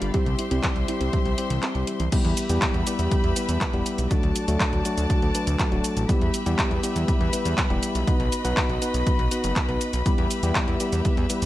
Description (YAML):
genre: italo disco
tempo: 121 BPM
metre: 4/4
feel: straight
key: E minor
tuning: A4 = 440 Hz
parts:
  - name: rich studio string section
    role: sustained chords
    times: 0.0-11.5 s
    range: F#4 to C6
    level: -31 LUFS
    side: left 2 dB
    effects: none
  - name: soft round pluck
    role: arpeggios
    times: 0.0-2.1 s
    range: E3 to C5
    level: -33 LUFS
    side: right 3 dB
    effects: chorus, tape echo
  - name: tine electric piano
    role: stabs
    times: 0.0-11.5 s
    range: F#3 to B4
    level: -27 LUFS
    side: left 1 dB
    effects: none
  - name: fat analog bass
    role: bass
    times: 0.0-11.5 s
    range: D1 to E2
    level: -26 LUFS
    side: equal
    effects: none
  - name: house drum kit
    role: drums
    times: 0.0-11.5 s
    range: cabasa, crash cymbal, handclaps, hi-hat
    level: -29 LUFS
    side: equal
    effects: none
  - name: electronic kick drum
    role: drums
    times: 0.1-11.1 s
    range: none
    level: -24 LUFS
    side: equal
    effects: none
room: light reverb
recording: none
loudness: -21 LUFS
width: side -15 dB against mid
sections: 0.0-2.1 A section; 2.1-11.5 B section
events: break 1.6-2.1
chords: 0.1 C; 2.1 Em; 4.1 D; 6.1 Em; 8.1 B; 10.1 Em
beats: | 0.14 0.64 1.13 1.63 | 2.12 2.62 3.12 3.61 | 4.11 4.60 5.10 5.59 | 6.09 6.59 7.08 7.58 | 8.07 8.57 9.07 9.56 | 10.06 10.55 11.05